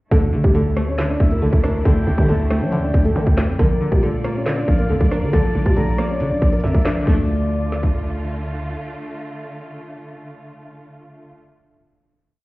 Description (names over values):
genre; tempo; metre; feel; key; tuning
hip hop, drill; 138 BPM; 4/4; half-time; D minor; A4 = 439 Hz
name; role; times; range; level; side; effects
dark concert grand piano; melody; 0.1-8.3 s; G3 to D5; -24 LUFS; left 1 dB; low-pass filter
string-like resonator pluck; accompaniment; 0.1-11.5 s; D3 to D4; -25 LUFS; right 1 dB; chorus, phaser, low-pass filter
rich studio string section; sustained chords; 0.1-11.3 s; Bb2 to D5; -31 LUFS; equal; none
growling 808-style bass; bass; 0.1-8.8 s; Bb1 to F3; -21 LUFS; equal; none
drill drum kit; drums; 0.1-7.9 s; crash cymbal, handclaps, hi-hat, kick drum, rim click, snare drum; -18 LUFS; equal; none
breathy flute-like synth lead; second line; 1.2-8.3 s; D5 to Bb5; -30 LUFS; left 2 dB; chorus, tape echo
room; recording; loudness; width
little or no reverb; heard muffled through a wall, stone room reverb, EQ; -16 LUFS; side -19 dB against mid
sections
0.1-7.1 hook; 7.1-10.5 final chord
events
none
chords
0.1 Dsus2; 3.6 Bb; 7.1 Dm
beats
| 0.11 0.55 0.98 1.42 | 1.85 2.29 2.72 3.16 | 3.59 4.03 4.46 4.90 | 5.33 5.77 6.20 6.64 | 7.07 7.50 7.94 8.38 | 8.81 9.24 9.68 10.11